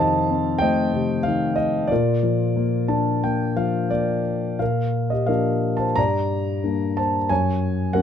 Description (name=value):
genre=classical, lyrical solo piano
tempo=86-97 BPM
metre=4/4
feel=rubato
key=Bb major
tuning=A4 = 440 Hz
part: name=dark grand piano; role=solo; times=0.0-8.0 s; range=F2 to Bb5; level=-19 LUFS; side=left 1 dB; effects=none
room=light reverb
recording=dark, warm production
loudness=-19 LUFS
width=side -8 dB against mid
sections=0.0-4.6 A section; 4.6-8.0 B section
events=grand piano fill 2.6-4.6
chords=0.0 F7; 1.9 Bb; 6.0 Gm; 7.3 Gb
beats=0.61 1.25 | 1.91 2.56 3.23 3.92 | 4.61 5.30 5.98 6.65 | 7.31 7.96